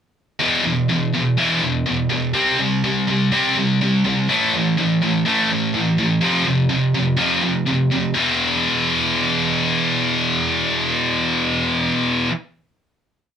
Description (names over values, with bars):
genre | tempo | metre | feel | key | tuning
rock | 124 BPM | 4/4 | straight | E phrygian | A4 = 441 Hz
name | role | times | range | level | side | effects
scooped high-gain guitar | solo | 0.4-12.3 s | E2 to C4 | -16 LUFS | equal | distortion
room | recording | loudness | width
moderate studio ambience, RT60 0.4 s | band playing live in one room | -16 LUFS | side -8 dB against mid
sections
0.4-8.2 verse; 8.2-12.0 final chord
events
none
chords
0.4 E5; 2.4 C5; 4.3 A5; 6.2 F5; 8.2 E5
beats
| 0.41 0.90 1.39 1.87 | 2.36 2.85 3.33 3.82 | 4.30 4.79 5.27 5.75 | 6.23 6.72 7.20 7.68 | 8.16 8.64 9.13 9.61 | 10.09 10.57 11.06 11.54